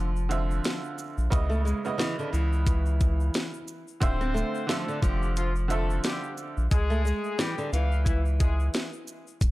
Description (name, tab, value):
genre	hip hop, boom-bap hip-hop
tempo	89 BPM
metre	4/4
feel	swing 58% on 16ths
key	unclear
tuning	A4 = 440 Hz
part	nylon-string guitar	melody	0.0-8.9 s	D3 to C4	-33 LUFS	equal	digital delay
part	bright upright piano	accompaniment	0.0-6.6 s	C#3 to E5	-34 LUFS	right 4 dB	cassette tape
part	soft dub sub bass	bass	0.0-9.5 s	D1 to C#2	-26 LUFS	equal	none
part	egg shaker	percussion	0.2-9.5 s	none	-50 LUFS	left 6 dB	none
part	drum and bass drum kit	drums	0.3-9.5 s	hi-hat, kick drum, shaker, snare drum	-27 LUFS	equal	none
part	mellow horn section	stabs	4.0-8.7 s	E3 to F5	-34 LUFS	left 4 dB	digital delay
room	small room ambience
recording	dark, warm production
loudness	-24 LUFS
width	side -18 dB against mid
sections	0.0-9.5 A section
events	none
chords	0.0 Dm9; 1.3 C#m9; 4.0 Dm9; 6.7 C#m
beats	0.65 | 1.32 1.99 2.67 3.34 | 4.02 4.69 5.37 6.04 | 6.71 7.39 8.06 8.73 | 9.41